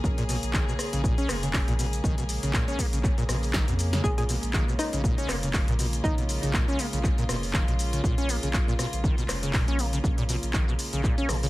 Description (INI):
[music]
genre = acid house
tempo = 120 BPM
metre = 4/4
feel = swing 56% on 16ths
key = Bb phrygian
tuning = A4 = 440 Hz
[part]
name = warm studio string section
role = sustained chords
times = 0.0-11.5 s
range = Db3 to Ab4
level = -34 LUFS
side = equal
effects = sidechain pumping
[part]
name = acid bass, saw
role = riff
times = 0.0-11.5 s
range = Bb2 to Db4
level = -31 LUFS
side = equal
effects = analog chorus, cassette tape, sidechain pumping, digital delay
[part]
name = warm sub bass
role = bass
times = 0.0-11.5 s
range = F1 to F2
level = -30 LUFS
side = equal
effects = sidechain pumping
[part]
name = electronic kick drum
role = drums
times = 0.0-11.2 s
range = none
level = -27 LUFS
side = equal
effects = none
[part]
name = punchy analog drum machine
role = drums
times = 0.0-11.5 s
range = handclaps, hi-hat, rim click, shaker, snare drum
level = -32 LUFS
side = left 1 dB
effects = none
[part]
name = hollow square pluck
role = melody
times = 4.0-6.5 s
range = Eb4 to Ab4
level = -34 LUFS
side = left 1 dB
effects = chorus, digital delay
[sound]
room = little or no reverb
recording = none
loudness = -24 LUFS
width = side -18 dB against mid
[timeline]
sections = 0.0-11.5 A section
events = drum fill 3.5-4.0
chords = 0.0 Bbm7